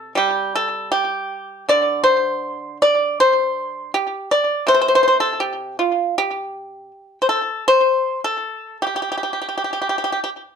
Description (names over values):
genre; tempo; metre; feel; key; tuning
chinese traditional, Chinese solo plucked strings; 80 BPM; 4/4; rubato; G shang mode; A4 = 440 Hz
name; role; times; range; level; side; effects
pipa; solo; 0.0-10.3 s; C3 to D5; -17 LUFS; equal; slapback echo
room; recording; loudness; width
light reverb; dark, warm production; -17 LUFS; side -6 dB against mid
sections
0.0-10.6 A section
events
none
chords
none